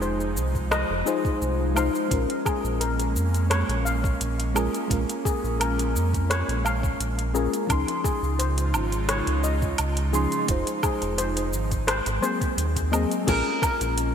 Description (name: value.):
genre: sunset chillout.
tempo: 86 BPM.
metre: 4/4.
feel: straight.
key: Bb minor.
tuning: A4 = 439 Hz.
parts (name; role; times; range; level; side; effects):
mellow FM electric piano; accompaniment; 0.0-14.1 s; F3 to C6; -29 LUFS; moving between left 8 dB and right 4 dB; chorus, auto-pan, low-pass filter, ping-pong delay.
airy breathy pad; sustained chords; 0.0-14.1 s; Db3 to F4; -32 LUFS; right 2 dB; chorus, vintage 12-bit sampler grit.
steel pan; arpeggios; 0.0-13.9 s; Ab4 to F5; -30 LUFS; left 4 dB; vintage 12-bit sampler grit, ping-pong delay.
round analog bass; bass; 0.0-14.1 s; F1 to F2; -26 LUFS; right 1 dB; none.
deep house drum kit; drums; 0.0-14.1 s; cabasa, crash cymbal, hi-hat, rim click, woodblock; -30 LUFS; right 2 dB; gated reverb.
electronic kick drum; drums; 0.5-13.8 s; none; -28 LUFS; right 1 dB; none.
nylon-string guitar; melody; 13.3-14.1 s; Bb4; -26 LUFS; right 4 dB; lush chorus, ping-pong delay.
room: moderate lush hall reverb, RT60 2.6 s.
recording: bright 1980s-style digital production.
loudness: -22 LUFS.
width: side -8 dB against mid.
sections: 0.0-13.3 A section.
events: filter sweep on FM electric piano 0.0-13.3.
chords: 0.0 Fm7; 2.1 Bbm7; 7.7 Dbmaj9; 10.5 Fm7; 11.9 Ab9; 13.3 Bbm7.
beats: 0.02 0.71 1.41 | 2.11 2.81 3.51 4.20 | 4.90 5.60 6.30 6.99 | 7.69 8.39 9.09 9.79 | 10.48 11.18 11.88 12.57 | 13.27 13.97.